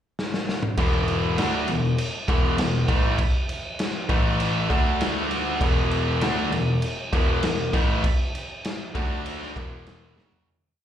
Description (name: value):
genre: hard rock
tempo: 99 BPM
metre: 4/4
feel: straight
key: unclear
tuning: A4 = 441 Hz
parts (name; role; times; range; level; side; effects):
- raw garage drum kit; drums; 0.2-10.5 s; crash cymbal, kick drum, snare drum, toms; -25 LUFS; equal; none
- distorted electric guitar; riff; 0.8-10.5 s; E2 to D4; -28 LUFS; left 9 dB; overdrive
- scooped high-gain guitar; riff; 0.8-10.5 s; E2 to D4; -28 LUFS; right 8 dB; distortion
- warm grand piano; bass; 0.8-10.4 s; E1 to D2; -26 LUFS; equal; none
room: studio reverb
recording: live gig heard through the venue's PA, club reverb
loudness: -21 LUFS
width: side -10 dB against mid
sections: 0.0-0.8 pickup bar; 0.8-10.5 riff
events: drum fill 0.2-0.8, 10.2-10.5; fade-out 8.0-10.5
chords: 0.0 N.C.; 0.8 E5; 4.1 A5; 4.7 D5; 5.6 E5; 9.0 D5; 9.6 E5